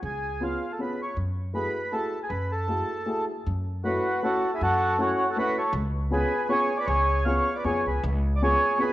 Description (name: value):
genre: musette waltz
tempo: 158 BPM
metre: 3/4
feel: swing 54% on 8ths, rubato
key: F# minor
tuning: A4 = 440 Hz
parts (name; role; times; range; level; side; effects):
- mellow accordion; melody; 0.0-8.9 s; C#4 to E#5; -26 LUFS; right 1 dB; none
- upright bass; bass; 0.0-8.5 s; C#2 to F#2; -28 LUFS; equal; none
- dark upright piano; accompaniment; 0.4-8.9 s; A3 to G#4; -30 LUFS; left 1 dB; none
room: moderate recital hall reverb, RT60 1.4 s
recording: worn, warbling old tape, cassette tape, warbly pitch drift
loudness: -24 LUFS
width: side -15 dB against mid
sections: 0.0-3.5 A section; 3.5-8.9 A section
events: none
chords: 0.0 C#7; 1.2 F#m9; 3.5 F#m7; 5.7 C#7